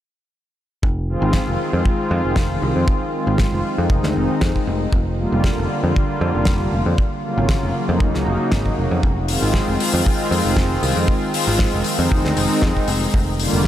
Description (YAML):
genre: nu-disco, nu disco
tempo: 117 BPM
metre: 4/4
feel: swing 53% on 16ths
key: F dorian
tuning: A4 = 437 Hz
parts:
  - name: picked electric bass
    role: bass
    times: 0.8-13.7 s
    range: F1 to F2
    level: -21 LUFS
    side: equal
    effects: none
  - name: kick drum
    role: drums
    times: 0.8-13.7 s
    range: none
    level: -20 LUFS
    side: equal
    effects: small room ambience
  - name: warm analog pad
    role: accompaniment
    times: 1.1-13.7 s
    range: Db3 to Gb4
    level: -20 LUFS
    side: equal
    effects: chorus, sidechain pumping, analog delay
  - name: damped 70s drum kit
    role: drums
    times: 1.3-13.7 s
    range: hi-hat, snare drum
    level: -26 LUFS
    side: left 2 dB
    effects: small room ambience
room: moderate huge ambient reverb, RT60 5.3 s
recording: dreamy mix soaked in reverb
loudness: -16 LUFS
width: side -12 dB against mid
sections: 0.8-13.7 A section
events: none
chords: 0.8 Fm7; 4.7 Gm7/F; 6.7 Gbmaj7/F; 9.0 Fm7; 12.9 Gm7/F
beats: | 0.83 1.34 1.85 2.37 | 2.88 3.39 3.90 4.42 | 4.93 5.44 5.96 6.47 | 6.98 7.49 8.01 8.52 | 9.03 9.54 10.06 10.57 | 11.08 11.60 12.11 12.62 | 13.13 13.65